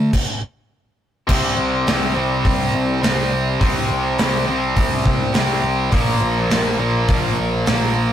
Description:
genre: hard rock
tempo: 104 BPM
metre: 4/4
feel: straight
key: unclear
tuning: A4 = 439 Hz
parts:
  - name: cranked stack guitar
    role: riff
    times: 0.0-8.1 s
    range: Bb2 to C4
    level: -22 LUFS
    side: left 4 dB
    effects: overdrive
  - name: heavy high-gain guitar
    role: riff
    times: 0.0-8.1 s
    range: Bb2 to C4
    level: -20 LUFS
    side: right 3 dB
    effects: distortion
  - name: gated 80s drum kit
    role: drums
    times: 0.1-7.8 s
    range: crash cymbal, hi-hat, kick drum, snare drum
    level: -20 LUFS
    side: equal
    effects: none
  - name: growling picked electric bass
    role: bass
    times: 1.3-8.1 s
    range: Bb1 to C2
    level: -25 LUFS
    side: equal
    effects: overdrive
room: moderate booth ambience, RT60 0.2 s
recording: rough rehearsal-room recording, warm saturation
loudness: -16 LUFS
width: side -10 dB against mid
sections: 0.0-1.3 A section; 1.3-8.1 B section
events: stop 0.1-1.3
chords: 0.1 N.C.; 1.3 C5; 5.9 Bb5

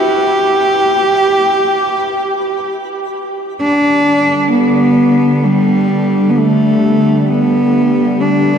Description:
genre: ambient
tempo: free time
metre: none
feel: none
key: G major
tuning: A4 = 438 Hz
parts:
  - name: warm cello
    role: melody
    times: 0.0-8.6 s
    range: G3 to G4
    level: -11 LUFS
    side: equal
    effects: shimmer reverb, tape echo
  - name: twinkling granular texture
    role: texture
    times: 0.0-3.6 s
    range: B4 to B5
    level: -34 LUFS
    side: equal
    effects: none
  - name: bowed-like drone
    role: drone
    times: 3.9-8.6 s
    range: D3 to G3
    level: -15 LUFS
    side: equal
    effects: built-in reverb
room: wet huge ambient reverb, RT60 8.8 s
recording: none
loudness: -10 LUFS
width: side -7 dB against mid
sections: 0.0-3.6 A section; 3.6-8.6 B section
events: none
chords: 0.0 N.C.; 3.6 G

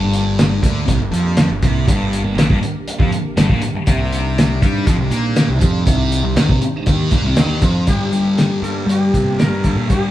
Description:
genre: psychedelic rock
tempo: 120 BPM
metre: 4/4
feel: straight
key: G minor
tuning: A4 = 440 Hz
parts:
  - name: string machine, cellos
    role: sustained chords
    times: 0.0-10.1 s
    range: G3 to D5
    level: -28 LUFS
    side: right 3 dB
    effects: phaser, ensemble chorus
  - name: thick fuzz guitar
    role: riff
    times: 0.0-10.1 s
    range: G2 to Bb3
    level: -19 LUFS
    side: left 1 dB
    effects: distortion, phaser
  - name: fuzz picked electric bass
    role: bass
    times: 0.0-10.1 s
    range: G1 to G3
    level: -21 LUFS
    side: equal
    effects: overdrive
  - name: cloth-damped thuddy drum kit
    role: drums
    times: 0.1-10.0 s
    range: hi-hat, kick drum, snare drum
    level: -16 LUFS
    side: equal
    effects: none
  - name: sitar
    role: melody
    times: 7.4-10.1 s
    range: D4 to Bb4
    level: -24 LUFS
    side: left 1 dB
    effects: none
room: moderate large studio reverb, RT60 1.1 s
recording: band playing live in one room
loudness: -14 LUFS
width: side -13 dB against mid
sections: 0.0-7.9 A section; 7.9-10.1 B section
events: none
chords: 0.0 Gm; 3.9 Cmadd9; 7.9 Gm

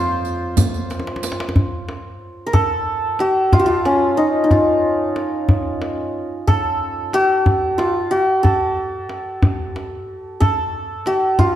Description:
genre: Persian modal ensemble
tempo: 61 BPM (dotted quarters)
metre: 6/8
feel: straight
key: F dastgah homayun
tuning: A4 = 440 Hz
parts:
  - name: santur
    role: melody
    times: 0.0-11.6 s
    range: Db4 to C5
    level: -18 LUFS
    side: equal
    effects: none
  - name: warm double bass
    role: drone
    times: 0.0-1.6 s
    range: F2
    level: -29 LUFS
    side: right 1 dB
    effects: none
  - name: riq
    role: percussion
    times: 0.2-1.4 s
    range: none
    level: -27 LUFS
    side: right 5 dB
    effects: none
  - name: tombak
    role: percussion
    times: 0.2-11.5 s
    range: none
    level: -19 LUFS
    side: equal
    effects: none
room: moderate recital hall reverb, RT60 1.5 s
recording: none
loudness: -16 LUFS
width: side -11 dB against mid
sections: 0.0-1.6 A section; 1.6-11.6 B section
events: drum fill 0.9-1.6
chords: none

